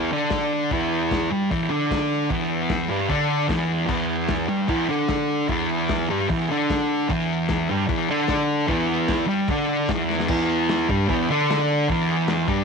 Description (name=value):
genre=garage rock duo or trio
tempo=150 BPM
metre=4/4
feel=straight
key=unclear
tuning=A4 = 441 Hz
part: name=thick fuzz guitar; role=riff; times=0.0-12.6 s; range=E2 to D4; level=-20 LUFS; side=equal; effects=distortion
part: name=crunchy breakbeat drum kit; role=drums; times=0.3-12.6 s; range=crash cymbal, hi-hat, kick drum, snare drum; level=-29 LUFS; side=left 2 dB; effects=none
room=light reverb, studio ambience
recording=1960s-style stereo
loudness=-20 LUFS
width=side -5 dB against mid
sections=0.0-10.3 A section; 10.3-12.6 B section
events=drum fill 10.1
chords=0.0 Em7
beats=0.31 | 0.71 1.10 1.50 1.90 | 2.30 2.70 3.10 3.50 | 3.90 4.30 4.70 5.10 | 5.50 5.90 6.30 6.70 | 7.10 7.50 7.90 8.30 | 8.70 9.10 9.50 9.90 | 10.30 10.70 11.10 11.49 | 11.89 12.29